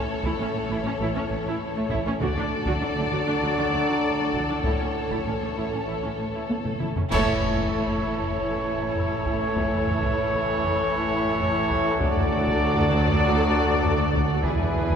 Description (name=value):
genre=cinematic, epic orchestral film score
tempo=98 BPM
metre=4/4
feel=straight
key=A major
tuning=A4 = 441 Hz
part: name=rich symphonic violin section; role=melody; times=0.0-15.0 s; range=B4 to D5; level=-31 LUFS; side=left 4 dB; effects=none
part: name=rich symphonic violin section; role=second line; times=0.0-15.0 s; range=G#4 to A4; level=-32 LUFS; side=left 2 dB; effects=none
part: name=clear trombone section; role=sustained chords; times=0.0-15.0 s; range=A2 to F#3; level=-32 LUFS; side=right 1 dB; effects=none
part: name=dark French horn section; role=sustained chords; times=0.0-15.0 s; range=G#3 to E4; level=-33 LUFS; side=left 2 dB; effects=none
part: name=rich symphonic cello section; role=bass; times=0.2-15.0 s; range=D2 to D3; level=-31 LUFS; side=equal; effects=none
part: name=taiko ensemble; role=drums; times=0.2-15.0 s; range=none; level=-30 LUFS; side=equal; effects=none
part: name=warm symphonic viola section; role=accompaniment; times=0.3-15.0 s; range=A3 to F#4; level=-31 LUFS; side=right 2 dB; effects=none
part: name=rich symphonic double bass section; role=bass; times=0.4-15.0 s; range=E1 to D2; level=-31 LUFS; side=right 2 dB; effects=none
part: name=bright trumpet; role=stabs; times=7.1-15.0 s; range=B4 to D5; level=-27 LUFS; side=right 1 dB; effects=none
part: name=clash cymbals and concert bass drum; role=percussion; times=7.1-8.3 s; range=none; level=-34 LUFS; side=equal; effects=none
room=wet cathedral reverb, RT60 5.4 s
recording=recorded in a church or concert hall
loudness=-22 LUFS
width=side -7 dB against mid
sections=0.0-7.1 A section; 7.1-15.0 A section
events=drum fill 6.5-7.1; band accent 7.1-7.7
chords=0.0 A; 2.2 D; 4.6 A; 12.0 D; 14.4 E